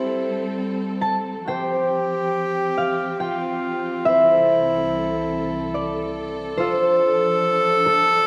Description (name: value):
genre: celtic folk, Celtic slow air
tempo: 65-72 BPM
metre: 3/4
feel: rubato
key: unclear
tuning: A4 = 440 Hz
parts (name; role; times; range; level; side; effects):
- warm tenor saxophone; second line; 0.0-8.3 s; E4 to A4; -25 LUFS; equal; none
- concert harp; accompaniment; 0.0-8.3 s; C4 to A5; -24 LUFS; equal; none
- warm chamber string section; sustained chords; 0.0-8.3 s; C2 to A4; -30 LUFS; equal; none
room: wet church reverb, RT60 2.7 s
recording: none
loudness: -21 LUFS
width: mono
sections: 0.0-8.3 A section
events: harp solo 0.0-8.3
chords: 0.0 Am7; 1.5 Csus4; 4.1 Am/C; 6.6 Dm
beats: 0.54 | 1.46 2.34 3.21 | 4.06 4.90 5.75 | 6.60 7.45